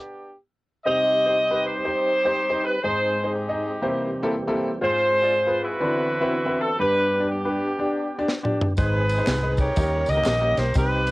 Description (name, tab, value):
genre	uptempo gospel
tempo	121 BPM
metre	4/4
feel	swing 63% on 8ths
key	C harmonic minor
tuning	A4 = 442 Hz
part	warm horn section	melody	0.0-11.1 s	B3 to Eb5	-22 LUFS	equal	none
part	warm concert grand piano	accompaniment	0.9-11.1 s	G2 to E5	-26 LUFS	left 1 dB	none
part	percussive tonewheel organ	sustained chords	0.9-11.1 s	E3 to Bb4	-34 LUFS	right 2 dB	slow rotary speaker
part	tight funk drum kit	drums	8.3-11.1 s	kick drum, ride cymbal, snare drum, toms	-26 LUFS	equal	cassette tape
part	fingered electric bass	bass	8.8-11.1 s	Ab1 to Eb2	-25 LUFS	equal	none
part	tambourine and handclaps	percussion	8.8-11.1 s	none	-38 LUFS	right 1 dB	none
room	light reverb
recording	home recording on cassette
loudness	-20 LUFS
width	side -21 dB against mid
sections	0.9-11.1 A section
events	stop 0.0-0.9; drum fill 8.3-8.8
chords	0.0 G; 0.9 Cm; 2.8 Ab; 3.8 C7; 4.8 Fm/Ab; 5.8 D13; 6.8 G; 8.8 Ab; 9.8 Eb7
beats	0.36 | 0.85 1.35 1.85 2.34 | 2.84 3.33 3.83 4.32 | 4.82 5.31 5.81 6.30 | 6.80 7.29 7.79 8.28 | 8.78 9.27 9.77 10.26 | 10.76